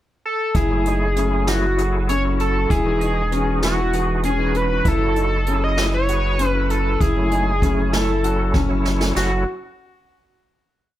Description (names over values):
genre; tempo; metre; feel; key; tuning
progressive instrumental, band music in an uneven meter; 195 BPM (eighths); 7/8; straight; F# dorian; A4 = 440 Hz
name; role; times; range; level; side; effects
octave-doubled lead; melody; 0.3-9.4 s; F#4 to D#5; -22 LUFS; equal; chorus
bright concert grand piano; arpeggios; 0.5-9.5 s; C#4 to F#4; -25 LUFS; left 5 dB; digital delay
round analog bass; bass; 0.5-9.4 s; E1 to F#1; -22 LUFS; equal; none
jazz brush drum kit; drums; 0.5-9.3 s; china cymbal, hi-hat, kick drum, snare drum; -23 LUFS; equal; none
bright tonewheel organ; accompaniment; 0.7-9.4 s; E3 to B4; -26 LUFS; right 1 dB; overdrive, chorus vibrato, fast rotary speaker
room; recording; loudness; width
light reverb; none; -17 LUFS; side -13 dB against mid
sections
0.0-0.6 pickup bar; 0.6-9.2 A section; 9.2-11.0 final chord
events
drum fill 8.6-9.2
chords
0.0 N.C.; 0.6 F#m9; 2.7 Emaj9; 4.9 F#m9; 7.0 F#m7